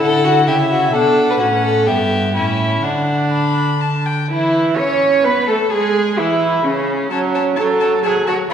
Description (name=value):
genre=quick classical-period movement for string quartet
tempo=128 BPM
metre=3/4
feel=rubato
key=D major, A major from 4.3 s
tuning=A4 = 440 Hz
part: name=dark violin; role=melody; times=0.0-8.5 s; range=C#4 to B5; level=-22 LUFS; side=left 5 dB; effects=none
part: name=warm violin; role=second line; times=0.0-8.5 s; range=C#4 to C#5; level=-19 LUFS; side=left 1 dB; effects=none
part: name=rich viola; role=accompaniment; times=0.0-8.5 s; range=C#3 to E4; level=-20 LUFS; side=right 2 dB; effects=none
part: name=dark cello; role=bass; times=0.0-8.5 s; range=G2 to C#5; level=-18 LUFS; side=right 2 dB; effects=none
room=wet concert hall reverb, RT60 1.7 s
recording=recorded in a church or concert hall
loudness=-14 LUFS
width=side -8 dB against mid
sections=0.0-4.3 A section; 4.3-8.5 B section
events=none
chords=0.0 D; 0.9 Bm; 1.4 F#m/A; 1.9 Em/G; 2.4 A; 2.8 D; 4.3 A/E; 5.7 E/G#; 6.7 N.C.; 7.1 F#m